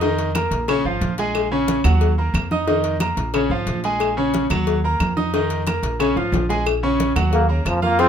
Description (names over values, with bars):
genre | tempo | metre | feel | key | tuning
latin, salsa | 180 BPM | 4/4 | straight | Bb minor | A4 = 440 Hz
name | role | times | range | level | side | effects
bright concert grand piano | accompaniment | 0.0-8.1 s | Db3 to F6 | -21 LUFS | right 1 dB | none
upright bass | bass | 0.0-8.1 s | Ab1 to F2 | -22 LUFS | right 1 dB | none
congas | percussion | 0.0-8.1 s | none | -28 LUFS | equal | none
cowbell and bongos | percussion | 0.0-8.1 s | none | -26 LUFS | left 10 dB | none
claves | percussion | 0.3-7.8 s | none | -29 LUFS | right 5 dB | none
brilliant trombone | melody | 7.3-8.1 s | Db3 to C4 | -18 LUFS | right 1 dB | none
room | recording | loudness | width
moderate studio reverb, RT60 0.6 s | minimal, uncompressed stereo recording | -18 LUFS | side -8 dB against mid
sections
0.0-6.7 A section; 6.7-8.1 B section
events
drum fill 6.2-6.7; trombone solo 6.7-8.1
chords
0.0 F7sus4; 0.7 Bbm7; 2.0 Ebm; 2.7 F7sus4; 3.3 Bbm7; 4.7 Ebm; 5.3 F7sus4; 6.0 Bbm7; 6.7 Bbm; 7.3 Ebm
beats
| 0.02 0.35 0.68 1.01 | 1.35 1.68 2.01 2.34 | 2.68 3.01 3.34 3.67 | 4.01 4.34 4.67 5.00 | 5.33 5.67 6.00 6.33 | 6.66 7.00 7.33 7.66 | 7.99